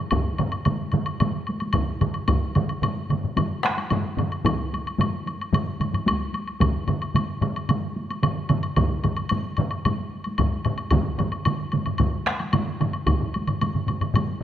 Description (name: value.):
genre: japanese traditional, taiko drum ensemble.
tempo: 111 BPM.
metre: 4/4.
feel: straight.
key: none.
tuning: none.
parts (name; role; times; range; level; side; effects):
taiko ensemble; percussion; 0.1-14.4 s; none; -30 LUFS; left 1 dB; none.
taiko ensemble; percussion; 0.1-14.3 s; none; -28 LUFS; left 2 dB; none.
taiko ensemble; percussion; 0.1-14.3 s; none; -27 LUFS; right 3 dB; none.
taiko ensemble; percussion; 0.1-13.2 s; none; -26 LUFS; equal; none.
woodblock; percussion; 0.1-14.3 s; none; -30 LUFS; left 3 dB; none.
room: moderate scoring stage reverb, RT60 1.8 s.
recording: close, detailed microphones.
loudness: -22 LUFS.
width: side -10 dB against mid.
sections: 0.0-14.4 A section.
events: none.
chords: none.